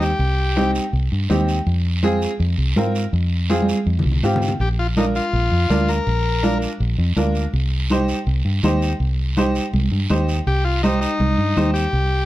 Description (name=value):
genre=latin, cumbia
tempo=164 BPM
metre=4/4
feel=straight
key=C minor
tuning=A4 = 438 Hz
part: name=combo organ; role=melody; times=0.0-0.7, 4.6-6.6, 10.5-12.3 s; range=Eb4 to Bb4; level=-22 LUFS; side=left 2 dB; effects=none
part: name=bright upright piano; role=accompaniment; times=0.0-11.8 s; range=C4 to C5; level=-23 LUFS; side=equal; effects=none
part: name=fingered electric bass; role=bass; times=0.0-12.3 s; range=Bb1 to Ab2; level=-20 LUFS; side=equal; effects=none
part: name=guiro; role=percussion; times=0.0-12.3 s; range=none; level=-33 LUFS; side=right 5 dB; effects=none
part: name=congas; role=percussion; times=0.6-11.8 s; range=none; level=-23 LUFS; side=right 2 dB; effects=none
room=moderate studio reverb, RT60 0.7 s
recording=dark, warm production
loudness=-17 LUFS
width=side -15 dB against mid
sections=0.0-10.5 A section; 10.5-12.3 A section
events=drum fill 3.5-4.6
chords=0.0 Cm; 1.7 Fm; 4.6 Bb; 7.5 Cm